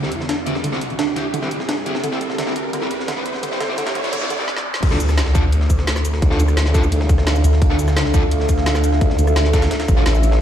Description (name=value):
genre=dark technical drum and bass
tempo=172 BPM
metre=4/4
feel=straight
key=D minor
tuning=A4 = 440 Hz
part: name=deep dark ambient pad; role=sustained chords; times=0.2-10.4 s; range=C4 to F5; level=-26 LUFS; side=right 1 dB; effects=chorus, built-in reverb, sidechain pumping
part: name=fuzz guitar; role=stabs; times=0.0-10.0 s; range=C4 to A4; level=-26 LUFS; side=equal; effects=distortion, digital delay
part: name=phased detuned saw bass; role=bass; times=0.0-9.0 s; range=G1 to E2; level=-21 LUFS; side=equal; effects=phaser, overdrive, sidechain pumping
part: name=breakbeat sampler-style drum kit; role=drums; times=0.0-10.4 s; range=hi-hat, snare drum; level=-30 LUFS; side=equal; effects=high-pass filter on hats, high-pass filter on snare
part: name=riser and noise sweep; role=sound effects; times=0.0-4.8 s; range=none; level=-27 LUFS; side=right 1 dB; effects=none
part: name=drum and bass drum kit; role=drums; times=0.1-10.3 s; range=cabasa, crash cymbal, hi-hat, rim click, snare drum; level=-26 LUFS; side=equal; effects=overdrive, high-pass filter on hats, high-pass filter on snare, high-pass filter on cymbals, high-pass filter on perc
part: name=warbly dusty pluck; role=arpeggios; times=0.3-4.4 s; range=D3 to D4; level=-26 LUFS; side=right 2 dB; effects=chorus, vintage 12-bit sampler grit, sidechain pumping, digital delay
part: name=electronic kick drum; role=drums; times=4.8-10.0 s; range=none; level=-16 LUFS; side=equal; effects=none
part: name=formant-sweep wobble bass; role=bass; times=6.2-10.4 s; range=A1 to D2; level=-16 LUFS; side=equal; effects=chorus, tube saturation
room=light reverb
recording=played on a big sound system in a bare room, large studio reverb, high-pass filter, faint mains hum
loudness=-16 LUFS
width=side -10 dB against mid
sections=0.0-4.8 A section; 4.8-10.4 B section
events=build-up 0.0-4.8; riser 0.0-4.5; filter sweep on ambient pad 0.0-4.8; filter sweep on synth arpeggio sound 0.0-4.8; filter sweep 0.0-4.8; noise sweep 3.4-4.8; drum fill 4.5-4.8; drop 4.8-10.4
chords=0.0 C; 4.8 Dm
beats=0.29 | 0.64 0.99 1.34 1.69 | 2.04 2.38 2.73 3.08 | 3.43 3.78 4.13 4.48 | 4.83 5.17 5.52 5.87 | 6.22 6.57 6.92 7.27 | 7.62 7.97 8.31 8.66 | 9.01 9.36 9.71 10.06 | 10.41